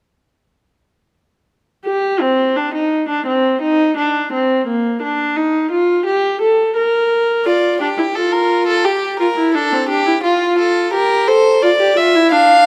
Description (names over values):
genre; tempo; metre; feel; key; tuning
classical, baroque-style fugue for string quartet; 86 BPM; 4/4; straight; unclear; A4 = 440 Hz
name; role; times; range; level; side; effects
warm viola; accompaniment; 1.9-12.7 s; Bb3 to Bb4; -17 LUFS; equal; none
warm violin; second line; 7.5-12.7 s; F4 to F5; -17 LUFS; equal; none
room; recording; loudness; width
moderate recital hall reverb, RT60 1.7 s; none; -15 LUFS; mono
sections
1.9-12.7 A section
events
none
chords
1.9 N.C.; 7.5 Dm; 8.8 Gm; 10.2 Fadd9; 11.6 Dm